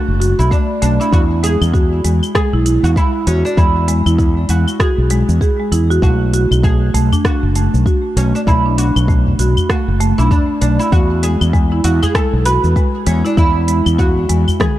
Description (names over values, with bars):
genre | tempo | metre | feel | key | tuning
organic downtempo | 98 BPM | 4/4 | swing 59% on 16ths | unclear | A4 = 439 Hz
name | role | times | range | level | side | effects
oud | melody | 0.0-14.8 s | C#4 to B4 | -21 LUFS | right 2 dB | digital delay
fretless electric bass | bass | 0.1-14.4 s | F#1 to E2 | -14 LUFS | equal | sidechain pumping
marimba with medium mallets | arpeggios | 0.2-14.8 s | G#3 to G#4 | -18 LUFS | equal | digital delay
organic electronic drum kit | drums | 0.2-14.8 s | claves, hi-hat, rim click, shaker, toms | -22 LUFS | equal | none
electronic kick drum | drums | 0.5-14.7 s | none | -15 LUFS | equal | none
udu | percussion | 7.1-14.6 s | none | -19 LUFS | left 1 dB | none
room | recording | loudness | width
small room ambience | dark, warm production | -12 LUFS | side -14 dB against mid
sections
0.0-14.8 A section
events
drum fill 14.6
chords
0.0 Bm7; 1.1 Eadd9; 6.0 Bm7; 10.9 Eadd9